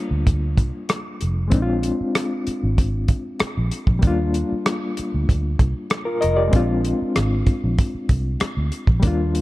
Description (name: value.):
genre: lush 1970s-style soul.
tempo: 96 BPM.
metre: 4/4.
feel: straight.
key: unclear.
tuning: A4 = 440 Hz.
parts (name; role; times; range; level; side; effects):
barky reed electric piano; accompaniment; 0.0-9.4 s; G3 to Eb5; -24 LUFS; left 2 dB; overdrive, fast tremolo.
vintage muted fingered electric bass; bass; 0.1-9.4 s; F1 to Eb2; -22 LUFS; equal; none.
warm soul drum kit; drums; 0.3-9.4 s; hi-hat, kick drum, rim click; -20 LUFS; equal; none.
room: light reverb, small room ambience.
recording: dark, warm production.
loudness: -18 LUFS.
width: side -18 dB against mid.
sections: 0.0-9.4 A section.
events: none.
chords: 0.0 Ebmaj9 (rootless); 1.5 Bb7; 4.0 Ebmaj9; 6.5 Bb7.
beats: 0.26 0.89 | 1.51 2.14 2.77 3.40 | 4.02 4.65 5.28 5.90 | 6.53 7.15 7.78 8.41 | 9.03.